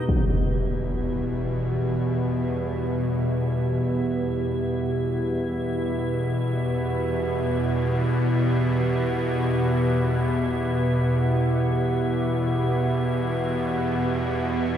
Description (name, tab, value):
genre	dark ambient drone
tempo	free time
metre	none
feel	none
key	E minor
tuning	A4 = 441 Hz
part	dark analog pad	sustained chords	0.0-14.8 s	E3 to F#5	-29 LUFS	equal	lush chorus
part	bowed-like drone	drone	0.0-14.8 s	E2 to B2	-23 LUFS	equal	built-in reverb
part	icy glass pad	texture	0.0-14.8 s	D#4 to E5	-33 LUFS	left 2 dB	chorus, built-in reverb
room	wet cathedral reverb, RT60 5.1 s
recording	none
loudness	-22 LUFS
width	side -9 dB against mid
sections	0.1-14.8 A section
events	fade-in on ambient pad 0.1-14.8; fade-out on analog synth pad 0.1-14.8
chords	0.1 Em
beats	free time